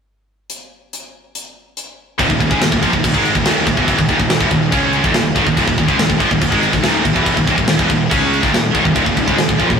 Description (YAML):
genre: heavy metal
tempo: 142 BPM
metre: 4/4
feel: straight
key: unclear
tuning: A4 = 439 Hz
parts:
  - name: tight metal drum kit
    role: drums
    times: 0.5-9.8 s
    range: crash cymbal, hi-hat, kick drum, snare drum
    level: -18 LUFS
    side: equal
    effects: none
  - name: scooped high-gain guitar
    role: riff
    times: 2.2-9.8 s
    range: Eb2 to Db4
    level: -19 LUFS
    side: left 6 dB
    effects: distortion
  - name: scooped high-gain guitar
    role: riff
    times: 2.2-9.8 s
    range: Eb2 to Db4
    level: -16 LUFS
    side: right 4 dB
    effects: distortion
  - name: fuzz picked electric bass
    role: bass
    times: 2.2-9.8 s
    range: Eb1 to Db2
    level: -23 LUFS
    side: left 1 dB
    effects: overdrive
  - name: distorted electric guitar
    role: riff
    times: 8.9-9.8 s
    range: Eb2 to Ab3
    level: -22 LUFS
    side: left 1 dB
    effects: distortion
room: moderate studio reverb, RT60 0.6 s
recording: rough rehearsal-room recording, faint mains hum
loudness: -12 LUFS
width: side -6 dB against mid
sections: 0.5-2.2 A section; 2.2-9.8 B section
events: none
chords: 0.5 N.C.; 2.2 Eb5